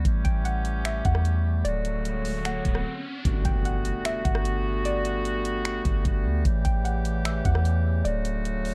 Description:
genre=hip hop, atmospheric cloud-rap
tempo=150 BPM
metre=4/4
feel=half-time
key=G lydian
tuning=A4 = 441 Hz
part: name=clear woodwind section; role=sustained chords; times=0.0-8.7 s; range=C#3 to G4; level=-33 LUFS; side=equal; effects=sidechain pumping
part: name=soft 808-style bass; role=bass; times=0.0-8.7 s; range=D1 to E2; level=-28 LUFS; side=equal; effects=none
part: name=trap drum kit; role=drums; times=0.1-8.7 s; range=finger snaps, hi-hat, kick drum, rim click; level=-29 LUFS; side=equal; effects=none
part: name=riser and impact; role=sound effects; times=1.6-4.9 s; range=none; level=-41 LUFS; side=equal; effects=none
part: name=soft round pluck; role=melody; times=0.2-8.4 s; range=D5 to G5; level=-36 LUFS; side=equal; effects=chorus, analog delay
room=little or no reverb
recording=dark, warm production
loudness=-26 LUFS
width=mono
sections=0.0-3.3 A section; 3.3-8.7 B section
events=riser 1.6-3.3; break 2.9-3.3; impact 3.3-4.9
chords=0.1 A7; 1.7 Dmaj7; 3.3 Gmaj9; 6.5 A7; 8.1 Dmaj7

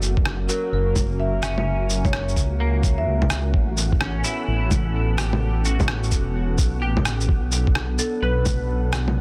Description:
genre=future garage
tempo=128 BPM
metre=4/4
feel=swing 64% on 16ths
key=unclear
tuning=A4 = 440 Hz
part: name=warbly tape-like pad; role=sustained chords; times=0.0-9.2 s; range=E3 to A#4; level=-34 LUFS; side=equal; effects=chorus, built-in reverb, sidechain pumping
part: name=dark detuned saw bass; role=bass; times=0.0-9.2 s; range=E1 to F#2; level=-26 LUFS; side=equal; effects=tube saturation, sidechain pumping
part: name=electronic shaker, rim click and bongos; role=drums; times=0.0-9.1 s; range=none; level=-28 LUFS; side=equal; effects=overdrive
part: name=wind-like tuned noise texture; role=texture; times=0.0-9.2 s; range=F#4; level=-40 LUFS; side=equal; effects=built-in reverb
part: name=electronic kick drum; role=drums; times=0.2-8.6 s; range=none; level=-23 LUFS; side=equal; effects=overdrive
part: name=marimba with medium mallets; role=melody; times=0.5-3.3, 8.0-8.5 s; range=A4 to E5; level=-31 LUFS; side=equal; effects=tape echo
part: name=semi-hollow electric guitar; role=accompaniment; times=0.5-9.2 s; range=F#3 to B4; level=-35 LUFS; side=equal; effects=ensemble chorus, sidechain pumping, tape echo
room=little or no reverb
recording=dense, heavily limited modern master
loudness=-22 LUFS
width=mono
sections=0.0-9.2 A section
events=none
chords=0.0 F#; 3.5 Aadd9; 7.3 Bm7

